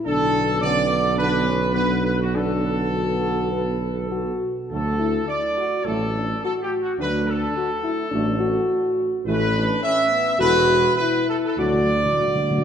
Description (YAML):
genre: classical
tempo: 104 BPM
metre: 4/4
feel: uneven beats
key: D major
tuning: A4 = 440 Hz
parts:
  - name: mellow French horn section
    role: sustained chords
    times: 0.0-12.6 s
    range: B3 to B4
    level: -24 LUFS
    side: left 2 dB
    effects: none
  - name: bright trumpet section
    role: melody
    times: 0.1-12.6 s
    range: F#4 to E5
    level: -23 LUFS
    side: right 1 dB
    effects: none
  - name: dark trombone section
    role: sustained chords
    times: 0.1-11.8 s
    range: D3 to B3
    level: -30 LUFS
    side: right 3 dB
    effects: none
  - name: mellow tuba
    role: bass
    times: 0.1-12.1 s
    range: E1 to D2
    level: -26 LUFS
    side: right 2 dB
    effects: none
  - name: timpani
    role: percussion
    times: 11.6-12.6 s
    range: D3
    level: -26 LUFS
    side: equal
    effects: none
room: wet concert hall reverb, RT60 2.3 s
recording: dark, warm production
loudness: -19 LUFS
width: side -8 dB against mid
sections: 0.0-12.6 A section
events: timpani fill 11.6-12.6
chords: 0.1 Bm7; 4.7 D; 9.3 Asus2; 11.6 D